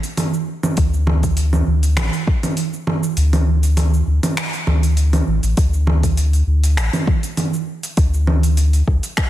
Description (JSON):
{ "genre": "organic downtempo", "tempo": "100 BPM", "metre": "4/4", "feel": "swing 54% on 16ths", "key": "unclear", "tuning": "A4 = 440 Hz", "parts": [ { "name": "deep house drum kit", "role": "drums", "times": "0.0-9.3 s", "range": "cabasa, congas, finger snaps, hi-hat", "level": "-21 LUFS", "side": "right 3 dB", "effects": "overdrive, soft clipping on snare" }, { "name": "warm sub bass", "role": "bass", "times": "0.8-9.0 s", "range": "A1 to D2", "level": "-15 LUFS", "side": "left 1 dB", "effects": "sidechain pumping" }, { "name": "electronic kick drum", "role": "drums", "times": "0.8-9.3 s", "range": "none", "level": "-18 LUFS", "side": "left 1 dB", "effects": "overdrive" } ], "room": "little or no reverb", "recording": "dense, heavily limited modern master", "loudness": "-15 LUFS", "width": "side -13 dB against mid", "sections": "0.0-5.6 A section; 5.6-9.3 B section", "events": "kick drops out 3.2-5.6", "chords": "none" }